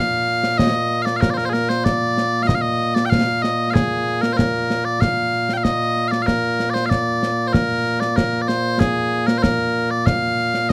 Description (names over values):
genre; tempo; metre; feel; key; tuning
scottish traditional, Scottish pipe music; 95 BPM; 4/4; straight; Bb mixolydian; A4 = 440 Hz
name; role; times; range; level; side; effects
loud bright bagpipes; melody; 0.0-10.7 s; Bb2 to G5; -21 LUFS; equal; none
concert snare drum and concert bass drum; drums; 0.3-10.7 s; none; -24 LUFS; equal; none
room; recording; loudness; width
light reverb; dry, close 1970s-style studio recording; -19 LUFS; mono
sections
0.0-10.7 A section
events
none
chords
none